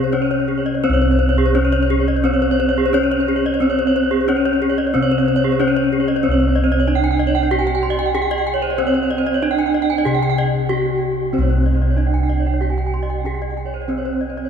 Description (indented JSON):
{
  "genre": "Balinese gamelan",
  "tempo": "84-94 BPM",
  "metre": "4/4",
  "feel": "straight",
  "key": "C pelog",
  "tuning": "A4 = 440 Hz",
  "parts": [
    { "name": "gamelan-type bronze metallophone", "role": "melody", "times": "0.0-14.5 s", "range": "C4 to Ab4-40c", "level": "-20 LUFS", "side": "right 1 dB", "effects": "none" },
    { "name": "gamelan-type bronze metallophone", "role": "arpeggios", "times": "0.0-14.4 s", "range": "Ab4-40c to C6", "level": "-23 LUFS", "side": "left 7 dB", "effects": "none" },
    { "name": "gamelan-type bronze metallophone", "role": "arpeggios", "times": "0.0-14.5 s", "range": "Ab4-40c to Ab5-40c", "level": "-23 LUFS", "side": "right 5 dB", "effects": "none" },
    { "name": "gamelan-type bossed gongs", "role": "bass", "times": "0.0-14.5 s", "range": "C2 to Db4", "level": "-20 LUFS", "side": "equal", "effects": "none" }
  ],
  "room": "wet cathedral reverb, RT60 5.1 s",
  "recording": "recorded in a church or concert hall, faint mains hum",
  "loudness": "-15 LUFS",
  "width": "side -7 dB against mid",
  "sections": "0.0-6.2 A section; 6.2-14.5 B section",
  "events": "break 10.4-11.3",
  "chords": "none"
}